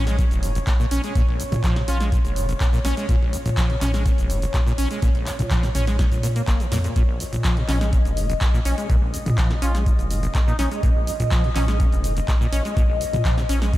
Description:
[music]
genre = acid house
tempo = 124 BPM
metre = 4/4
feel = straight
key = Bb minor pentatonic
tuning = A4 = 440 Hz
[part]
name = warbly tape-like pad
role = sustained chords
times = 0.0-13.8 s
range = Db5 to Eb5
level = -31 LUFS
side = left 1 dB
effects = chorus, built-in reverb, phaser, sidechain pumping
[part]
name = acid bass, saw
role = riff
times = 0.0-13.8 s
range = Bb1 to Db4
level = -27 LUFS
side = equal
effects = tube saturation, analog chorus, tape echo
[part]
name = round analog bass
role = bass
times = 0.0-13.8 s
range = F1 to Bb2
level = -24 LUFS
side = equal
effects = sidechain pumping
[part]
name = punchy analog drum machine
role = drums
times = 0.1-13.8 s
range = cabasa, handclaps, hi-hat, snare drum, toms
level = -30 LUFS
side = equal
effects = none
[part]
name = electronic kick drum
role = drums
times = 0.2-13.8 s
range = none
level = -21 LUFS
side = equal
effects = none
[part]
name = trumpet with cup mute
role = melody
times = 1.9-2.0, 9.6-10.7 s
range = Eb4 to F4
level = -35 LUFS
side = equal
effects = diffuse ambient delay
[sound]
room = light reverb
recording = none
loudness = -18 LUFS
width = side -16 dB against mid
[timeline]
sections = 0.0-13.8 A section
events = none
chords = 0.0 Bbm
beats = 0.19 0.67 | 1.15 1.64 2.12 2.61 | 3.09 3.57 4.06 4.54 | 5.03 5.51 5.99 6.48 | 6.96 7.44 7.93 8.41 | 8.90 9.38 9.86 10.35 | 10.83 11.31 11.80 12.28 | 12.77 13.25 13.73

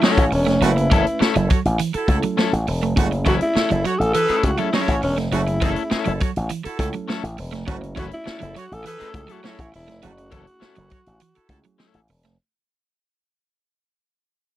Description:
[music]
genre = funk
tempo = 102 BPM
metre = 4/4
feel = straight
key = F# minor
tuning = A4 = 442 Hz
[part]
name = breathy alto saxophone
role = melody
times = 0.0-11.8 s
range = C#4 to A4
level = -23 LUFS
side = left 1 dB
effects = none
[part]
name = warm horn section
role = second line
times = 0.0-11.6 s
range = A3 to C#5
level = -27 LUFS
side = right 4 dB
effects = none
[part]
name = electric guitar at the edge of break-up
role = accompaniment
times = 0.0-12.0 s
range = A3 to B4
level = -24 LUFS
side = left 9 dB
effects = none
[part]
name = electric guitar at the edge of break-up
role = riff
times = 0.0-12.4 s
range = E3 to A3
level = -27 LUFS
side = right 8 dB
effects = none
[part]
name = reed electric piano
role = stabs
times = 0.0-12.0 s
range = A3 to B4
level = -28 LUFS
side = right 2 dB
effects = fast tremolo
[part]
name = vintage drum kit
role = drums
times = 0.0-12.4 s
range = hi-hat, kick drum, snare drum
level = -22 LUFS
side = equal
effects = none
[part]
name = slap bass with an envelope filter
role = bass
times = 0.2-12.4 s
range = E1 to C#2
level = -22 LUFS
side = equal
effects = none
[sound]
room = little or no reverb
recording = dry, close 1970s-style studio recording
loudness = -18 LUFS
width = side -13 dB against mid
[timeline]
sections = 0.0-12.4 A section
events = fade-out 0.0-12.4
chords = 0.0 F#m7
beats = 0.03 | 0.62 1.20 1.79 2.38 | 2.97 3.56 4.15 4.74 | 5.32 5.91 6.50 7.09 | 7.68 8.27 8.85 9.44 | 10.03 10.62 11.20 11.79

